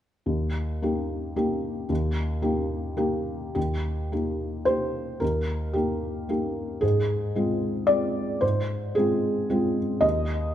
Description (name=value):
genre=neoclassical minimalist piano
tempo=112 BPM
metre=3/4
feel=rubato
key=Eb major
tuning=A4 = 439 Hz
part: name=felt-muted upright piano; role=solo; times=0.3-10.5 s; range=Eb2 to Eb5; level=-24 LUFS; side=equal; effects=none
room=moderate recital hall reverb, RT60 1.6 s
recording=none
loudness=-24 LUFS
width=side -10 dB against mid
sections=0.3-3.6 A section; 3.6-10.5 B section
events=none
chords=0.3 Eb; 6.8 Ab6; 10.0 N.C.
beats=| 0.26 0.82 1.36 | 1.90 2.43 2.98 | 3.56 4.12 4.67 | 5.21 5.75 6.29 | 6.83 7.36 7.89 | 8.42 8.97 9.50 | 10.03